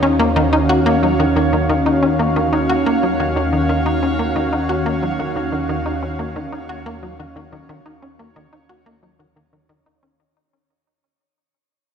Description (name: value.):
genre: ambient, sequencer-driven space music.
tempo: 90 BPM.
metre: 4/4.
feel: straight.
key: unclear.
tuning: A4 = 441 Hz.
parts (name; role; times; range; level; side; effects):
lush unison pad; sustained chords; 0.0-10.2 s; Eb2 to F5; -18 LUFS; equal; chorus, shimmer reverb.
tight sequencer bass; riff; 0.0-10.2 s; Eb3 to Gb4; -20 LUFS; left 1 dB; analog chorus, shimmer reverb, ping-pong delay.
bubbling stepped-filter texture; texture; 0.0-10.2 s; Db5; -30 LUFS; right 1 dB; chorus, built-in reverb, shimmer reverb.
room: wet echo chamber reverb, RT60 2.2 s.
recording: echo-heavy mix.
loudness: -15 LUFS.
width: side -7 dB against mid.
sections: 0.0-10.2 A section.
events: fade-out 0.0-10.2; filter sweep on analog synth bass 0.0-10.2.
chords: 0.0 Ebm7.